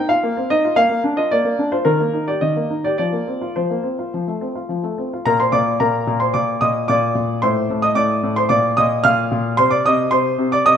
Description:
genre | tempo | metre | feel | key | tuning
classical-period piano sonatina | 111 BPM | 4/4 | rubato | Bb major | A4 = 438 Hz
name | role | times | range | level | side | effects
clear concert grand piano | solo | 0.0-10.8 s | A2 to F6 | -16 LUFS | equal | none
room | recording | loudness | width
moderate recital hall reverb, RT60 1.7 s | close, detailed microphones | -16 LUFS | side -8 dB against mid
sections
0.0-5.3 A section; 5.3-10.8 B section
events
none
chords
0.0 F5; 0.8 Bb; 1.9 Eb; 3.0 Fsus4; 4.1 F; 5.3 Bb; 7.4 Amadd11; 8.5 Bb; 9.6 Cm

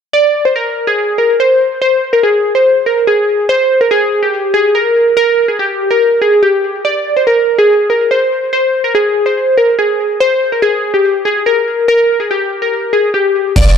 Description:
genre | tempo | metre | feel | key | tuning
hip hop, trap | 143 BPM | 4/4 | half-time | unclear | A4 = 440 Hz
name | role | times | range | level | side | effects
glassy digital keys | melody | 0.1-13.8 s | G4 to D5 | -10 LUFS | equal | chorus, ping-pong delay
long sustained 808-style bass | bass | 13.6-13.8 s | F1 | -9 LUFS | equal | none
breakbeat sampler-style drum kit | drums | 13.6-13.7 s | crash cymbal, hi-hat, kick drum | -10 LUFS | equal | none
room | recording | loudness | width
light reverb, digital ambience | none | -10 LUFS | side -7 dB against mid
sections
0.1-13.6 A section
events
none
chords
none

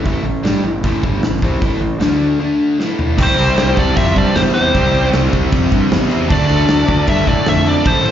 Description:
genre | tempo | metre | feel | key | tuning
hard rock | 154 BPM | 4/4 | straight | unclear | A4 = 440 Hz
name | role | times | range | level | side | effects
overdriven electric guitar | riff | 0.0-8.1 s | G2 to G4 | -19 LUFS | left 2 dB | slapback echo
fuzz fingered electric bass | bass | 0.0-8.1 s | G1 to A2 | -17 LUFS | right 1 dB | overdrive
big rock drum kit | drums | 0.1-8.1 s | crash cymbal, hi-hat, kick drum, snare drum, toms | -18 LUFS | equal | none
nasal lead guitar with a parked wah | melody | 3.2-8.1 s | C5 to E5 | -18 LUFS | equal | overdrive, slapback echo, tape echo
octave-fuzz lead guitar | second line | 3.2-8.1 s | G4 to C5 | -24 LUFS | right 3 dB | distortion, slapback echo
sludgy distorted guitar | riff | 3.2-8.1 s | A2 to D4 | -19 LUFS | equal | overdrive, slapback echo
room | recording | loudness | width
light reverb | live gig heard through the venue's PA, club reverb, nothing above 7.5 kHz | -12 LUFS | side -10 dB against mid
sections
0.0-3.2 A section; 3.2-8.1 B section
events
drum fill 2.8-3.2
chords
0.0 Am; 2.0 D5; 2.8 A5; 3.2 C; 6.3 Dm

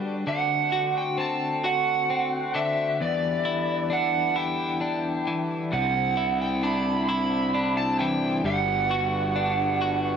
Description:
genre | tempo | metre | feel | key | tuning
post-rock | 44 BPM (dotted quarters) | 6/8 | straight | C lydian | A4 = 441 Hz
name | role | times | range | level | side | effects
pedal harmonium | sustained chords | 0.0-10.2 s | D3 to F#4 | -36 LUFS | equal | none
twelve-string electric guitar | arpeggios | 0.0-10.2 s | E2 to F#4 | -28 LUFS | left 3 dB | harmonic tremolo, analog delay
lead guitar through a small cranked amp | melody | 0.3-10.2 s | D5 to B5 | -26 LUFS | right 4 dB | overdrive, analog delay
fuzz fingered electric bass | bass | 5.7-10.2 s | G1 to C2 | -27 LUFS | equal | overdrive
room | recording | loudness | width
moderate huge ambient reverb, RT60 4.6 s | none | -23 LUFS | side -7 dB against mid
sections
0.0-10.2 A section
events
none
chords
0.3 D7; 3.0 Em7; 5.7 Cadd9; 8.4 Gmaj7

